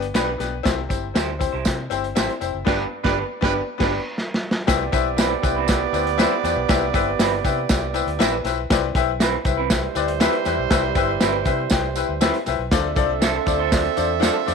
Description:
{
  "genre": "uptempo 1960s-style soul",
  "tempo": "119 BPM",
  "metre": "4/4",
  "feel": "straight",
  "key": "C major",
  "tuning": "A4 = 440 Hz",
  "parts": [
    { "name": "bright grand piano", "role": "accompaniment", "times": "0.0-14.5 s", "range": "G2 to G5", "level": "-23 LUFS", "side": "left 13 dB", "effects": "none" },
    { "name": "vintage muted fingered electric bass", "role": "bass", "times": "0.0-14.5 s", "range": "F1 to C3", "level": "-29 LUFS", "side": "right 1 dB", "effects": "none" },
    { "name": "crunchy breakbeat drum kit", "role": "drums", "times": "0.0-14.5 s", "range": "crash cymbal, hi-hat, kick drum, snare drum", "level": "-22 LUFS", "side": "right 1 dB", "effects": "none" },
    { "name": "electric guitar through a small old amp", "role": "stabs", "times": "0.1-14.4 s", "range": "C4 to C5", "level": "-28 LUFS", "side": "right 13 dB", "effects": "spring reverb" },
    { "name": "tambourine", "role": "percussion", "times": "0.2-14.5 s", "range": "none", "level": "-34 LUFS", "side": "right 16 dB", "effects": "none" },
    { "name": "warm horn section", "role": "second line", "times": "2.7-14.5 s", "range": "G3 to E5", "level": "-25 LUFS", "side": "right 13 dB", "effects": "none" }
  ],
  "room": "light reverb, small room ambience",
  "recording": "1960s-style stereo with parts hard left and right",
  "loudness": "-18 LUFS",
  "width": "side -5 dB against mid",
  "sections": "0.0-4.7 A section; 4.7-14.5 B section",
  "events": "band accent 2.7-4.7; drum fill 3.7-4.7",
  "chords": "0.0 G; 0.7 C; 2.7 G; 4.7 Cmaj7; 12.7 Dm7",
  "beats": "0.15 | 0.66 1.16 1.66 2.16 | 2.67 3.17 3.67 4.18 | 4.68 5.18 5.68 6.19 | 6.69 7.19 7.69 8.20 | 8.70 9.20 9.70 10.21 | 10.71 11.21 11.71 12.21 | 12.72 13.22 13.72 14.22"
}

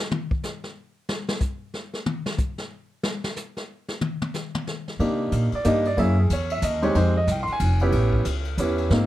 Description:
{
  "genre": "jazz, small-group swing and bop",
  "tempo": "184 BPM",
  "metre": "3/4",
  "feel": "swing 62% on 8ths",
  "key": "unclear",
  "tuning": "A4 = 440 Hz",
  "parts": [
    { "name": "jazz brush drum kit", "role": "drums", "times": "0.1-9.0 s", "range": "hi-hat, kick drum, ride cymbal, snare drum, toms", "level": "-29 LUFS", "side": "left 2 dB", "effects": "none" },
    { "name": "warm grand piano", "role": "accompaniment", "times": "5.0-9.1 s", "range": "G#3 to C6", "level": "-23 LUFS", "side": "equal", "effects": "none" },
    { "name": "upright bass", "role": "bass", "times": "5.0-9.1 s", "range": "F1 to C3", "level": "-22 LUFS", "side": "equal", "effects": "none" }
  ],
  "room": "light reverb",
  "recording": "dark, warm production",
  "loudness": "-22 LUFS",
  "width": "side -14 dB against mid",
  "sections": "0.0-5.0 A section; 5.0-9.1 A section",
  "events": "drum solo 0.0-5.0",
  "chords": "0.0 N.C.; 5.0 Cm7; 6.0 F#9; 7.0 Fm7; 7.9 A9",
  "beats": "| 0.11 0.44 0.76 | 1.09 1.42 1.74 | 2.07 2.39 2.72 | 3.04 3.37 3.69 | 4.02 4.34 4.67 | 5.00 5.32 5.65 | 5.97 6.30 6.62 | 6.95 7.28 7.60 | 7.93 8.26 8.58 | 8.91"
}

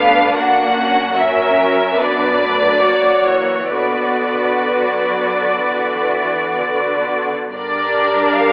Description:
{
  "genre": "classical, slow romantic movement for string orchestra",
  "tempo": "60-77 BPM",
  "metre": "4/4",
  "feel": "rubato",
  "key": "B minor",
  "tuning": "A4 = 440 Hz",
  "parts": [
    { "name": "warm studio violin section", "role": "melody", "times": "0.0-8.5 s", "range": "B4 to F#5", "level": "-19 LUFS", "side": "equal", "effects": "none" },
    { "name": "warm studio violin section", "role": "second line", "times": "0.0-8.5 s", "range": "C#4 to D5", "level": "-20 LUFS", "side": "equal", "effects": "none" },
    { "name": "dark studio viola section", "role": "accompaniment", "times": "0.0-8.5 s", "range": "D3 to D4", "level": "-24 LUFS", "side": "equal", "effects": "none" },
    { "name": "warm studio cello section", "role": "bass", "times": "0.0-8.5 s", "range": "F#2 to F#3", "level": "-30 LUFS", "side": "equal", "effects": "none" }
  ],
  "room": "wet concert hall reverb, RT60 2.0 s",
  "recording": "telephone sound",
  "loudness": "-16 LUFS",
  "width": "mono",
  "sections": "0.0-7.6 A section",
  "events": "none",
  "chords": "0.4 F#; 2.0 Bm/F#; 2.8 F#7; 3.7 Bm; 7.6 Gm",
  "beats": "| 0.38 1.17 1.98 2.82 | 3.73 4.69 5.66 6.61 | 7.55 8.38"
}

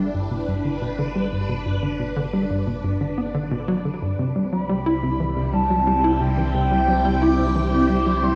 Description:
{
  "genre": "ambient, sequencer-driven space music",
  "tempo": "89 BPM",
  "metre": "4/4",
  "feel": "straight",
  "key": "unclear",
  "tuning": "A4 = 439 Hz",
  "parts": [
    { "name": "phased string machine", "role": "sustained chords", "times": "0.0-8.4 s", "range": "C3 to G5", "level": "-28 LUFS", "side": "equal", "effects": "ensemble chorus, phaser, shimmer reverb" },
    { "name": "tight sequencer bass", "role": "riff", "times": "0.0-8.3 s", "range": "G2 to E4", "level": "-25 LUFS", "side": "equal", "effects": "analog chorus, shimmer reverb, tape echo" },
    { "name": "warm sub bass", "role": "bass", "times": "0.0-8.4 s", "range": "G1 to C2", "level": "-31 LUFS", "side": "equal", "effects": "none" },
    { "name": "wind-like tuned noise texture", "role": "texture", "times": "0.0-8.4 s", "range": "D4 to D5", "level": "-41 LUFS", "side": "equal", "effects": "none" },
    { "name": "mellow wooden flute", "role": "melody", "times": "4.5-8.4 s", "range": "G5 to D6", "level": "-26 LUFS", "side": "equal", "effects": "shimmer reverb, tape echo" }
  ],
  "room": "wet plate reverb, RT60 2.4 s",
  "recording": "worn, warbling old tape, cassette tape, warbly pitch drift, studio reverb",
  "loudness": "-22 LUFS",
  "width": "mono",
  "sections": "0.0-8.4 A section",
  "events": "fade-in on sub bass 0.0-8.4",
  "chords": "0.0 G; 4.2 C",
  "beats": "0.14 0.82 | 1.49 2.16 2.84 3.51 | 4.19 4.86 5.54 6.21 | 6.88 7.56 8.23"
}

